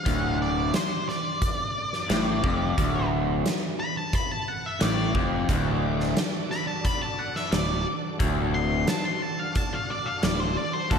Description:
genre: classic rock.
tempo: 88 BPM.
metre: 4/4.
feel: straight.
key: unclear.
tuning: A4 = 440 Hz.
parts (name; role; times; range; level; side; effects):
octave-fuzz lead guitar; melody; 0.0-11.0 s; A4 to C6; -30 LUFS; left 1 dB; distortion.
crunchy overdriven guitar; riff; 0.1-11.0 s; D2 to A2; -31 LUFS; right 8 dB; none.
overdriven electric guitar; riff; 0.1-11.0 s; D2 to A2; -30 LUFS; left 11 dB; slapback echo.
fuzz fingered electric bass; bass; 0.1-11.0 s; D1 to A1; -30 LUFS; equal; overdrive.
huge arena drum kit; drums; 0.1-11.0 s; hi-hat, kick drum, snare drum; -28 LUFS; equal; none.
bright tonewheel organ; sustained chords; 5.5-11.0 s; D4 to D5; -37 LUFS; right 1 dB; slow rotary speaker, overdrive, chorus vibrato.
room: moderate lush hall reverb, RT60 2.0 s, small room reverb.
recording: big arena sound.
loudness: -24 LUFS.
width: side -6 dB against mid.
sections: 0.0-11.0 A section.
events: lead electric guitar solo 0.0-11.0.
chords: 0.0 D.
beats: | 0.07 0.75 1.43 2.10 | 2.78 3.46 4.14 4.82 | 5.50 6.17 6.85 7.53 | 8.21 8.89 9.56 10.24 | 10.92.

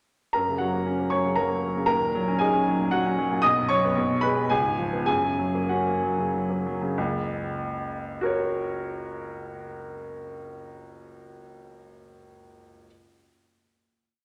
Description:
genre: classical, virtuoso piano study.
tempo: 91-119 BPM.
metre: 3/4.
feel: rubato.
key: F# major.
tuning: A4 = 440 Hz.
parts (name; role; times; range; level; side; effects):
clear baby grand piano; solo; 0.3-12.9 s; F#1 to D#6; -26 LUFS; equal; none.
room: wet recital hall reverb, RT60 1.8 s.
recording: none.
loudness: -25 LUFS.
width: mono.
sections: 0.4-7.0 A section; 7.0-10.7 final chord.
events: slowing down 2.7-7.0.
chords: 0.4 F#; 1.9 D#m7; 3.4 B; 3.9 G#m/B; 4.5 C#7; 5.1 F#.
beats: | 0.35 0.88 1.39 | 1.90 2.41 2.91 | 3.42 3.94 4.48 | 5.07 5.69 6.32 | 6.97 7.59 8.21 | 8.82 9.44 10.05.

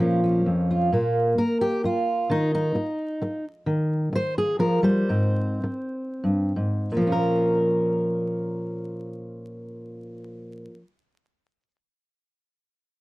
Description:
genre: folk, solo fingerstyle acoustic guitar.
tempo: 82-132 BPM.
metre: 3/4.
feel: straight.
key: Bb dorian.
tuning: A4 = 440 Hz.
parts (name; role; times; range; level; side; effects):
fingerpicked steel-string acoustic guitar; solo; 0.0-10.8 s; F2 to C5; -22 LUFS; equal; none.
room: light reverb.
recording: vinyl crackle.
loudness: -22 LUFS.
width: side -19 dB against mid.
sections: 0.9-6.9 A section; 6.9-11.2 B section.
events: slowing down 3.7-6.9.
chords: 0.0 Bbm; 0.9 Bb5; 2.3 Eb5; 3.7 Eb69; 5.1 Ab; 6.9 Bbm.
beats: 0.46 | 0.92 1.38 1.83 | 2.29 2.75 3.20 | 3.65 4.12 4.59 | 5.09 5.63 6.23 | 6.91 7.64 8.36 | 9.08 9.80 10.53.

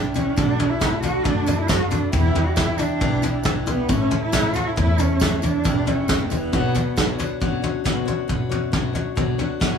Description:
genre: indie folk with a building arrangement.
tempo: 136 BPM.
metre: 4/4.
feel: straight.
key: B minor.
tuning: A4 = 439 Hz.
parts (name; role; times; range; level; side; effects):
warm cello; melody; 0.0-7.2 s; A3 to F#4; -24 LUFS; right 2 dB; none.
picked steel-string acoustic guitar; accompaniment; 0.0-9.8 s; E2 to C#5; -27 LUFS; left 6 dB; none.
pedal harmonium; sustained chords; 0.0-7.4 s; D4 to B5; -35 LUFS; right 2 dB; none.
upright bass; bass; 0.0-9.4 s; E1 to B2; -25 LUFS; equal; none.
tambourine; percussion; 0.1-7.3 s; none; -40 LUFS; right 6 dB; none.
soft brush drum kit; drums; 0.2-9.7 s; kick drum, snare drum, toms; -23 LUFS; equal; none.
fingerpicked steel-string acoustic guitar; accompaniment; 7.4-9.8 s; F#2 to F#4; -29 LUFS; left 3 dB; none.
room: light reverb.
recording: band playing live in one room, small room ambience.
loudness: -19 LUFS.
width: side -7 dB against mid.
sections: 0.0-7.4 A section; 7.4-9.8 B section.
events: none.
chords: 0.4 Bm7; 2.1 Em7; 3.9 A; 5.7 Em7; 6.5 Bmadd9.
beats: | 0.37 0.81 1.25 1.69 | 2.13 2.57 3.01 3.45 | 3.89 4.33 4.77 5.21 | 5.65 6.09 6.53 6.97 | 7.41 7.85 8.29 8.73 | 9.17 9.61.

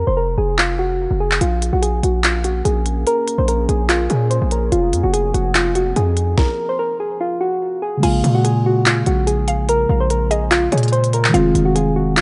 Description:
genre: hip hop, trap.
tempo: 145 BPM.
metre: 4/4.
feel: half-time.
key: Bb minor.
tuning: A4 = 440 Hz.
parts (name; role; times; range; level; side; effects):
soft electric-piano-like synth keys; melody; 0.0-12.2 s; F4 to C5; -22 LUFS; equal; chorus, tape echo.
hard-hitting 808-style bass; bass; 0.0-12.2 s; F1 to Bb2; -21 LUFS; equal; none.
trap drum kit; drums; 0.6-12.2 s; crash cymbal, handclaps, hi-hat, kick drum, snare drum; -22 LUFS; equal; none.
deep dark ambient pad; sustained chords; 2.4-6.4 s; F3 to Ab4; -32 LUFS; equal; chorus, built-in reverb.
mallet-like synth pluck; second line; 8.0-12.2 s; Db5 to Ab5; -29 LUFS; equal; chorus, tape echo.
tine electric piano; accompaniment; 8.0-12.2 s; Db3 to F5; -23 LUFS; equal; none.
room: light reverb, digital ambience.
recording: nothing above 10.7 kHz.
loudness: -17 LUFS.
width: mono.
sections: 0.0-8.0 A section; 8.0-12.2 B section.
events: break 0.0-1.4; stop 6.4-8.0.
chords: 0.0 Fm; 1.4 Bbm7; 4.7 Fm7; 8.0 Bbm7; 11.3 Fm7.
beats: 0.17 0.58 1.00 | 1.41 1.82 2.24 2.65 | 3.07 3.48 3.89 4.31 | 4.72 5.13 5.55 5.96 | 6.38 6.79 7.20 7.62 | 8.03 8.45 8.86 9.27 | 9.69 10.10 10.51 10.93 | 11.34 11.76 12.17.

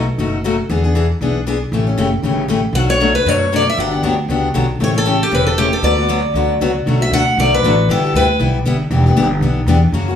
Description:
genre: acoustic string swing (jazz manouche).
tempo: 234 BPM.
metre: 4/4.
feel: swing 56% on 8ths.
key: D major, B minor from 6.9 s.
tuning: A4 = 441 Hz.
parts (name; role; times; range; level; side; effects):
picked steel-string acoustic guitar; accompaniment; 0.0-10.2 s; B2 to B4; -18 LUFS; left 4 dB; none.
upright bass; bass; 0.0-10.2 s; E1 to F#2; -17 LUFS; equal; none.
picked steel-string acoustic guitar; melody; 2.8-8.4 s; G4 to F#5; -17 LUFS; equal; plate reverb.
room: moderate studio reverb, RT60 0.7 s.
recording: studio reverb.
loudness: -13 LUFS.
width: side -8 dB against mid.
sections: 0.0-6.9 A section; 6.9-10.2 B section.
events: none.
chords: 0.0 B7; 0.7 E7; 1.7 A7; 2.7 Bm7; 3.8 Gmaj7; 4.8 A7; 5.8 D6; 6.9 Bm7; 7.9 G6; 8.9 Em7.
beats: 0.18 0.43 | 0.69 0.95 1.20 1.46 | 1.72 1.98 2.23 2.49 | 2.75 3.00 3.26 3.52 | 3.77 4.03 4.29 4.54 | 4.80 5.06 5.32 5.57 | 5.83 6.08 6.34 6.60 | 6.85 7.11 7.37 7.62 | 7.88 8.13 8.39 8.65 | 8.90 9.16 9.41 9.67 | 9.93.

